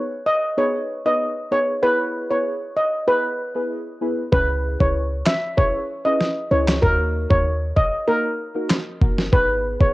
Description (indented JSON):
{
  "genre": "dancehall",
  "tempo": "96 BPM",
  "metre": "4/4",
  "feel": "straight",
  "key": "Eb phrygian",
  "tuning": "A4 = 440 Hz",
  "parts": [
    { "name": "steel pan", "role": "melody", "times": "0.3-9.9 s", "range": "Bb4 to Fb5", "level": "-21 LUFS", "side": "equal", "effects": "cassette tape" },
    { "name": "deep mellow chord stab", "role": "accompaniment", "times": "0.6-9.9 s", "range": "Bb3 to Cb5", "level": "-27 LUFS", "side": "equal", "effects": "chorus, sidechain pumping" },
    { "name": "clean 808-style bass", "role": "bass", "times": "4.3-9.9 s", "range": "Gb1 to Eb2", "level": "-23 LUFS", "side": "equal", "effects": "none" },
    { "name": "dusty soul sampler-style drum kit", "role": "drums", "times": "4.3-9.9 s", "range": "handclaps, kick drum, snare drum", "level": "-19 LUFS", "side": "equal", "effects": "overdrive, cassette tape" }
  ],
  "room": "light reverb",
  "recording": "home recording on cassette",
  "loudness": "-18 LUFS",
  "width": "side -19 dB against mid",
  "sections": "0.0-9.9 A section",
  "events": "none",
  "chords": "0.0 Abm; 1.8 E; 4.3 Dbm7; 6.8 Ebm; 9.3 Abm"
}